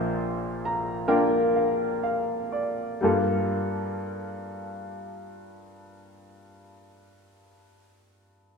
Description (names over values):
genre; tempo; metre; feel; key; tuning
folk; 59-69 BPM; 4/4; straight; G minor; A4 = 438 Hz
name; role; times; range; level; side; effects
clear upright piano; melody; 0.0-8.6 s; Bb1 to Bb5; -25 LUFS; left 1 dB; none
room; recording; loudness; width
wet concert hall reverb, RT60 2.3 s; recorded in a church or concert hall; -24 LUFS; side -5 dB against mid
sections
0.0-3.0 A section; 3.0-7.0 B section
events
slowing down 0.0-3.0; upright piano fill 0.2-3.0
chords
0.0 Bbadd9; 3.0 Gm9